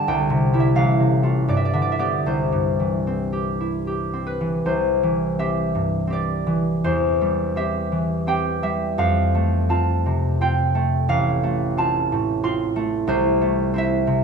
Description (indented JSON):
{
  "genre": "classical, solo harp piece",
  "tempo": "73-94 BPM",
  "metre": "3/4",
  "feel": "rubato",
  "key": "C major",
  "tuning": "A4 = 440 Hz",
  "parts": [
    { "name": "concert harp", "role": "solo", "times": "0.0-14.2 s", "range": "A1 to C6", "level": "-19 LUFS", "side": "equal", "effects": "none" }
  ],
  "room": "wet recital hall reverb, RT60 1.8 s",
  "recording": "minimal, uncompressed stereo recording",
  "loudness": "-19 LUFS",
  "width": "side -6 dB against mid",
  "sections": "0.0-4.7 A section; 4.7-14.2 B section",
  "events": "none",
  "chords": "0.1 C; 0.8 F/A; 1.5 G; 2.3 C; 6.8 C/E; 9.0 F; 11.1 F/A; 13.1 Am/C",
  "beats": "| 0.08 0.76 1.48 | 2.26 3.08 3.88 | 4.67 5.39 6.11 | 6.84 7.57 8.28 | 9.00 9.70 10.40 | 11.09 11.76 12.43 | 13.07 13.73"
}